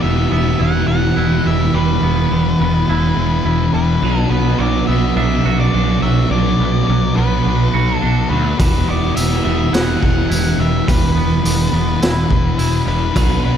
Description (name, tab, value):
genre	rock, shoegaze and dream pop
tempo	105 BPM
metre	4/4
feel	straight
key	E minor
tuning	A4 = 440 Hz
part	octave-fuzz lead guitar	melody	0.0-13.6 s	B4 to F#5	-23 LUFS	left 2 dB	distortion, digital delay
part	twangy electric guitar	arpeggios	0.0-13.6 s	F#3 to F#4	-26 LUFS	right 9 dB	lush chorus, digital delay
part	overdriven electric guitar	riff	0.0-13.6 s	B2 to G4	-19 LUFS	right 9 dB	reverse reverb
part	thick fuzz guitar	riff	0.0-13.6 s	E2 to B3	-19 LUFS	left 9 dB	distortion, ensemble chorus
part	fuzz picked electric bass	bass	0.0-13.6 s	E1 to D2	-19 LUFS	equal	overdrive
part	raw garage drum kit	drums	8.6-13.3 s	hi-hat, kick drum, snare drum	-18 LUFS	equal	none
room	light reverb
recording	none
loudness	-13 LUFS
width	side -9 dB against mid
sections	0.0-13.6 A section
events	none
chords	0.0 Emadd9; 4.0 Bm; 8.6 Em